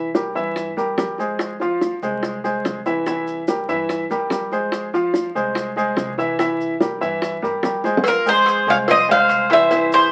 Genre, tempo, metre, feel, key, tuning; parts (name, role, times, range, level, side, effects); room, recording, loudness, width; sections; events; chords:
latin, Cuban son and guajira; 144 BPM; 4/4; straight; F minor; A4 = 440 Hz
clear grand piano; arpeggios; 0.0-10.1 s; E3 to F5; -23 LUFS; equal
upright bass; bass; 0.0-10.1 s; C2 to G2; -41 LUFS; equal
bongos and cowbell; percussion; 0.1-9.9 s; -25 LUFS; equal
maracas; percussion; 0.2-10.1 s; -45 LUFS; equal
Cuban tres; melody; 8.1-10.1 s; Bb4 to F5; -16 LUFS; equal
clear trumpet; second line; 8.1-10.1 s; F4 to Db5; -27 LUFS; equal
wet small room reverb, RT60 0.5 s; very old 78 rpm record, vinyl crackle; -20 LUFS; mono
0.0-8.1 A section; 8.1-10.1 B section
drum fill 7.8
0.0 C7; 1.4 Fm; 3.1 C7; 4.7 Fm; 6.4 C7; 8.1 Fm